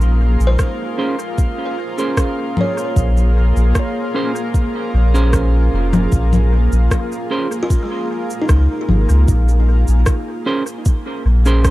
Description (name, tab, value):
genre	ambient dub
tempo	76 BPM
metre	4/4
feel	straight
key	Bb minor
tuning	A4 = 441 Hz
part	granular cloud pad	sustained chords	0.0-11.7 s	Bb3 to Bb4	-24 LUFS	equal	built-in reverb
part	buzzing kalimba	arpeggios	0.0-11.3 s	Ab3 to Db5	-27 LUFS	left 1 dB	low-pass filter, tape echo
part	semi-hollow electric guitar	stabs	0.0-11.7 s	Db4 to C5	-24 LUFS	right 3 dB	vintage 12-bit sampler grit, dub echo
part	soft dub sub bass	bass	0.0-11.7 s	F1 to Db2	-13 LUFS	equal	none
part	electronic cabasa, rim click and congas	drums	0.0-11.7 s	none	-23 LUFS	left 1 dB	dub echo
part	drifting glass-harmonics texture	texture	0.0-9.3 s	F4 to F5	-31 LUFS	equal	chorus, built-in reverb
part	electronic kick drum	drums	0.6-11.7 s	none	-16 LUFS	equal	none
room	little or no reverb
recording	dark, warm production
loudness	-14 LUFS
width	side -17 dB against mid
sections	0.0-9.3 A section; 9.3-11.7 B section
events	filter sweep on kalimba 0.0-9.3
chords	0.0 Bbm9